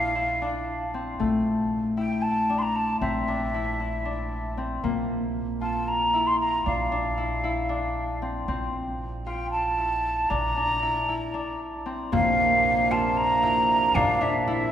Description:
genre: contemporary instrumental, chamber music in an uneven meter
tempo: 231 BPM (eighths)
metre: 7/8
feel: straight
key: Bb lydian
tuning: A4 = 440 Hz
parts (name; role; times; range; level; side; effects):
- breathy mellow jazz flute; melody; 0.0-14.7 s; E5 to C6; -25 LUFS; equal; none
- Celtic harp; arpeggios; 0.0-14.7 s; A3 to F4; -28 LUFS; left 2 dB; none
- upright bass; bass; 0.0-14.7 s; Bb1; -34 LUFS; right 2 dB; none
- pedal harmonium; sustained chords; 12.1-14.7 s; C3 to D4; -30 LUFS; right 4 dB; none
- frame drum; percussion; 12.1-14.2 s; none; -34 LUFS; right 3 dB; none
room: wet church reverb, RT60 3.3 s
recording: recorded in a church or concert hall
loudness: -23 LUFS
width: side -10 dB against mid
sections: 0.0-12.1 A section; 12.1-14.7 B section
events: break 11.3-12.1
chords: 0.0 Bb; 1.2 Am/Bb; 4.8 Bb; 12.1 Bbadd9(#11)

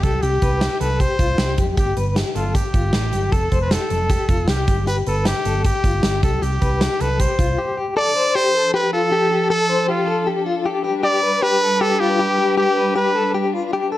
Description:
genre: jangly indie pop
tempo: 155 BPM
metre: 4/4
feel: straight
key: G mixolydian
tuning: A4 = 438 Hz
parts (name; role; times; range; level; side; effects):
- brilliant trumpet; melody; 0.0-13.3 s; F4 to D5; -20 LUFS; equal; slapback echo
- direct-recorded clean electric guitar; arpeggios; 0.0-14.0 s; F4 to C5; -22 LUFS; left 4 dB; tremolo, slapback echo
- hollow-body short-scale fingered electric bass; bass; 0.0-7.6 s; F1 to C2; -22 LUFS; equal; none
- big rock drum kit; drums; 0.0-7.5 s; hi-hat, kick drum, snare drum; -21 LUFS; right 1 dB; none
- warm studio string section; sustained chords; 8.0-14.0 s; F3 to B4; -24 LUFS; right 1 dB; none
room: light reverb, small room ambience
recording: dark, warm production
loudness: -16 LUFS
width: side -14 dB against mid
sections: 0.0-8.0 A section; 8.0-14.0 B section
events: break 7.6-8.0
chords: 0.0 C5; 1.8 G; 3.3 F; 4.7 G; 6.2 C5; 8.0 F6; 10.8 G

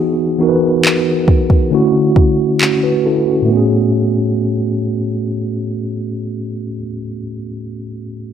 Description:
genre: contemporary R&B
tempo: 68 BPM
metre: 4/4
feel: straight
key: A major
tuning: A4 = 440 Hz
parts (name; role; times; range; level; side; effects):
- mellow tine electric piano; accompaniment; 0.0-8.3 s; A2 to B4; -14 LUFS; equal; medium stereo tremolo, low-pass filter
- smooth R&B drum kit; drums; 0.9-2.8 s; handclaps, kick drum; -13 LUFS; equal; none
room: moderate concert hall reverb, RT60 1.9 s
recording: none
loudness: -12 LUFS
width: side -8 dB against mid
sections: 0.0-3.5 A section; 3.5-7.0 B section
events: filter sweep on tine electric piano 0.0-3.5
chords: 0.0 Emaj9; 1.7 Dmaj9; 3.5 Amaj9

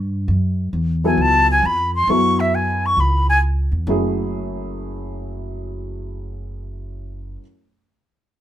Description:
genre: jazz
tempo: 134 BPM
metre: 4/4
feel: swing 67% on 8ths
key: F# minor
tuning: A4 = 440 Hz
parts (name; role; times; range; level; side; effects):
- upright bass; bass; 0.0-7.4 s; F#1 to G2; -22 LUFS; equal; none
- dark upright piano; accompaniment; 1.0-7.4 s; F#2 to A4; -23 LUFS; left 1 dB; none
- jazz flute; melody; 1.1-3.4 s; E5 to C#6; -17 LUFS; equal; none
room: light reverb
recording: minimal, uncompressed stereo recording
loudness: -16 LUFS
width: side -11 dB against mid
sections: 0.0-3.9 A section; 3.9-7.5 B section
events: flute solo 0.0-3.9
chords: 0.0 F#m7; 3.9 F#m9

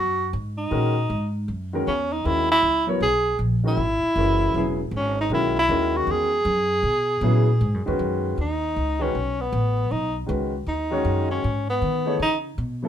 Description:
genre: modal jazz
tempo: 156 BPM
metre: 4/4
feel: swing 66% on 8ths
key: G# phrygian from 8.4 s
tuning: A4 = 441 Hz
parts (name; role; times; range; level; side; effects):
- warm tenor saxophone; melody; 0.0-12.4 s; B3 to G#4; -22 LUFS; equal; none
- upright bass; bass; 0.0-12.9 s; E1 to D#3; -25 LUFS; equal; none
- warm concert grand piano; accompaniment; 0.7-12.9 s; Db3 to Db5; -26 LUFS; left 1 dB; none
room: light reverb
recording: minimal, uncompressed stereo recording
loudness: -20 LUFS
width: side -10 dB against mid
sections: 0.0-8.4 A section; 8.4-12.9 B section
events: tenor saxophone solo 8.4-12.9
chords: 0.0 Ebm7; 2.2 Eadd9; 8.4 G#m7

